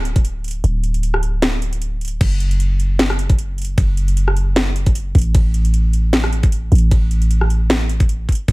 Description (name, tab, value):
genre	future bass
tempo	153 BPM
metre	4/4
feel	swing 55% on 16ths, half-time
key	F# minor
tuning	A4 = 441 Hz
part	warm 808-style bass	bass	0.0-8.5 s	D1 to A1	-16 LUFS	equal	sidechain pumping
part	trap drum kit	drums	0.1-8.5 s	crash cymbal, hi-hat, ride cymbal, rim click, snare drum	-21 LUFS	equal	overdrive
part	electronic kick drum	drums	0.2-8.5 s	none	-15 LUFS	equal	none
room	little or no reverb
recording	none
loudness	-14 LUFS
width	side -22 dB against mid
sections	0.0-8.5 A section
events	kick drops out 0.6-2.2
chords	none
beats	0.25 | 0.64 1.03 1.42 1.82 | 2.21 2.60 2.99 3.38 | 3.78 4.17 4.56 4.95 | 5.35 5.74 6.13 6.52 | 6.91 7.31 7.70 8.09 | 8.48